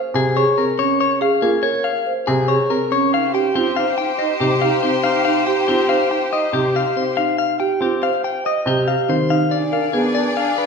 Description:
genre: classical, minimalist pattern music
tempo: 141 BPM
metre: 5/4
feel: straight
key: unclear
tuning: A4 = 438 Hz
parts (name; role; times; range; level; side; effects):
- marimba with soft mallets; arpeggios; 0.0-10.7 s; C4 to Eb5; -21 LUFS; right 5 dB; none
- dark grand piano; accompaniment; 0.1-10.2 s; C3 to C4; -23 LUFS; right 2 dB; none
- clean electric guitar; melody; 0.2-10.7 s; G4 to G5; -20 LUFS; left 7 dB; none
- mellow clarinet; second line; 3.1-10.7 s; D4 to Eb4; -27 LUFS; right 4 dB; none
- clear symphonic string section; sustained chords; 3.1-10.7 s; G4 to D5; -24 LUFS; left 2 dB; none
room: wet recital hall reverb, RT60 1.6 s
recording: recorded in a church or concert hall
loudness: -16 LUFS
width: side -5 dB against mid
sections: 0.0-10.7 A section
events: none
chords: 0.0 Bbm7; 3.1 Cm; 9.5 Bb7b9

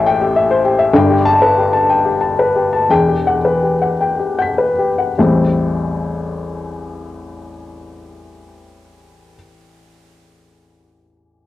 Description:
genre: neoclassical minimalist piano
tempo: 50-69 BPM (dotted quarters)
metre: 6/8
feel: rubato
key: A dorian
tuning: A4 = 440 Hz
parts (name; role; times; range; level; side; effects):
- dark baby grand piano; solo; 0.0-11.5 s; E1 to B6; -13 LUFS; left 2 dB; cassette tape
room: moderate spring reverb, RT60 2.5 s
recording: home recording on cassette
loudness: -12 LUFS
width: side -14 dB against mid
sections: 0.0-5.2 A section; 5.2-9.8 B section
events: slowing down 0.1-5.2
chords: 0.0 Am7; 0.9 Gadd9; 2.9 Emadd9; 5.2 Am7

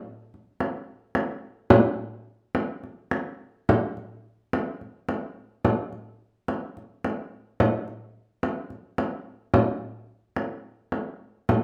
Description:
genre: contemporary instrumental, contemporary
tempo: 216 BPM (eighths)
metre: 7/8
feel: straight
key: none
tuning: none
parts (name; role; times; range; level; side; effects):
- frame drum; percussion; 0.3-11.6 s; none; -24 LUFS; equal; none
room: wet studio reverb, RT60 0.8 s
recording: none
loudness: -28 LUFS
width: mono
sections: 0.0-3.7 A section; 3.7-11.6 B section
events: none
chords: none

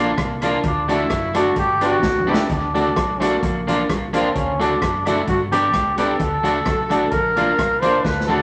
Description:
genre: ska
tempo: 130 BPM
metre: 4/4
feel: swing 54% on 8ths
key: D major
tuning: A4 = 440 Hz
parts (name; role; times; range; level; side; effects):
- brilliant trombone; melody; 0.0-8.4 s; Bb3 to C5; -23 LUFS; equal; none
- electric guitar at the edge of break-up; accompaniment; 0.0-8.4 s; A3 to G4; -26 LUFS; equal; dub echo
- warm upright piano; stabs; 0.0-8.4 s; D4 to D5; -26 LUFS; equal; none
- hollow-body short-scale fingered electric bass; bass; 0.0-8.4 s; F#1 to D2; -31 LUFS; equal; none
- vintage drum kit; drums; 0.2-8.3 s; hi-hat, kick drum, rim click, snare drum, toms; -28 LUFS; equal; dub echo
room: wet studio reverb, RT60 0.8 s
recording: none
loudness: -19 LUFS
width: mono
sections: 0.0-8.4 A section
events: trombone solo 0.0-8.4; drum fill 2.0-2.5, 8.0-8.4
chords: 0.0 Bb; 0.6 D; 1.6 G; 2.5 D; 3.4 Bb; 4.3 D; 5.3 G; 6.2 D; 7.1 Bb

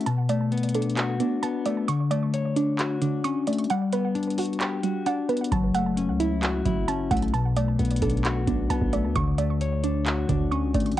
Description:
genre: hip hop, trap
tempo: 132 BPM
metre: 4/4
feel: half-time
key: unclear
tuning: A4 = 437 Hz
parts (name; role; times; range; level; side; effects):
- mellow electric guitar; accompaniment; 0.0-11.0 s; B2 to C#5; -25 LUFS; left 4 dB; cassette tape
- soft round pluck; arpeggios; 0.0-11.0 s; D3 to C#6; -29 LUFS; right 6 dB; chorus, cassette tape, tape echo
- booming analog drum machine; drums; 0.0-11.0 s; handclaps, hi-hat, kick drum; -30 LUFS; right 1 dB; cassette tape
- long sustained 808-style bass; bass; 5.5-11.0 s; F#1 to D2; -28 LUFS; right 1 dB; none
room: little or no reverb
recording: home recording on cassette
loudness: -22 LUFS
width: side -13 dB against mid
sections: 0.0-11.0 A section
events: break 0.0-5.5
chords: 0.1 Bm7; 1.9 Dmaj7; 3.7 Gmaj7; 5.5 F#m7; 7.3 Bm7; 9.2 Dmaj7

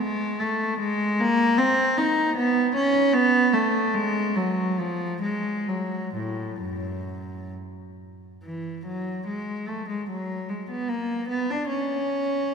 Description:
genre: classical, baroque-style suite movement for unaccompanied cello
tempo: 64-78 BPM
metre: 3/4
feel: rubato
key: F# minor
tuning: A4 = 440 Hz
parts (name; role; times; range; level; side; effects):
- rich cello; solo; 0.0-12.5 s; F#2 to D#4; -23 LUFS; equal; none
room: wet church reverb, RT60 3.7 s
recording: none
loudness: -22 LUFS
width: side -6 dB against mid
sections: 0.0-8.4 A section; 8.4-12.5 A section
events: none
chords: none

